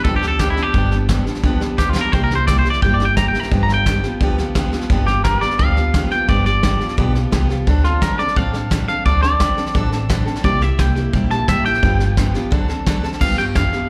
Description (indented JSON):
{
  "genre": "rockabilly",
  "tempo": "173 BPM",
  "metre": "4/4",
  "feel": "straight",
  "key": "G mixolydian",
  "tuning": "A4 = 441 Hz",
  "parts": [
    { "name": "twangy electric guitar", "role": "melody", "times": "0.0-13.9 s", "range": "E4 to Bb5", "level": "-23 LUFS", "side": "equal", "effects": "slapback echo, tape echo" },
    { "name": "picked steel-string acoustic guitar", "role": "accompaniment", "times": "0.0-13.9 s", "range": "G2 to A4", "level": "-25 LUFS", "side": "equal", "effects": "slapback echo" },
    { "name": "soft brush drum kit", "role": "drums", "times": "0.0-13.8 s", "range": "crash cymbal, hi-hat, kick drum, snare drum", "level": "-22 LUFS", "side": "equal", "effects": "none" },
    { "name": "upright bass", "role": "bass", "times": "0.1-13.9 s", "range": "G1 to G2", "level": "-23 LUFS", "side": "equal", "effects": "none" }
  ],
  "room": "little or no reverb",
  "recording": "live gig heard through the venue's PA, club reverb",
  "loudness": "-17 LUFS",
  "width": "mono",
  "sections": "0.0-13.2 A section",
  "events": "clean electric guitar solo 0.0-13.2; drum fill 1.8-2.1",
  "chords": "0.0 G7; 2.1 C7; 3.5 G7; 7.7 D7; 10.4 C7; 11.8 G7; 12.5 D7; 13.2 G7"
}